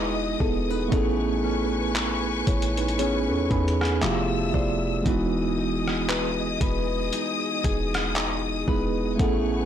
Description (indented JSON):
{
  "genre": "contemporary R&B",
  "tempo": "58 BPM",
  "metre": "4/4",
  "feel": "swing 58% on 16ths",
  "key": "E major",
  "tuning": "A4 = 440 Hz",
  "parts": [
    { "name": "mellow tine electric piano", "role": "accompaniment", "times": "0.0-9.7 s", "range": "C3 to B5", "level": "-26 LUFS", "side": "right 4 dB", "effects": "fast stereo tremolo" },
    { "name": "warm symphonic string section", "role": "sustained chords", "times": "0.0-9.7 s", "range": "G#4 to E6", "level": "-31 LUFS", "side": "left 5 dB", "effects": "sidechain pumping" },
    { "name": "nylon-string guitar", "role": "arpeggios", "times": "0.0-9.7 s", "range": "E3 to C5", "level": "-32 LUFS", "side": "left 7 dB", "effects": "digital delay" },
    { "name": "clean 808-style bass", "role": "bass", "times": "0.0-9.7 s", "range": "E1 to E2", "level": "-30 LUFS", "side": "equal", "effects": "none" },
    { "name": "soft synth bell", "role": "texture", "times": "0.0-9.7 s", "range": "B4 to F#5", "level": "-37 LUFS", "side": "left 5 dB", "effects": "chorus, phaser, digital delay" },
    { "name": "detuned 8-bit digital drum machine", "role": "drums", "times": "0.4-9.5 s", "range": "handclaps, hi-hat, kick drum, rim click", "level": "-28 LUFS", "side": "equal", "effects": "none" }
  ],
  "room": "little or no reverb",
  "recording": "blown-out, overdriven recording, overdrive",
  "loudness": "-22 LUFS",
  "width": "side -10 dB against mid",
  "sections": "0.0-9.7 A section",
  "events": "tine electric piano fill 3.0-5.1",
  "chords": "0.0 Emaj7; 0.9 Amaj9; 4.0 Fmaj7; 5.1 Emaj7",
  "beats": "| 0.92 1.95 2.99 4.02 | 5.06 6.09 7.13 8.16 | 9.20"
}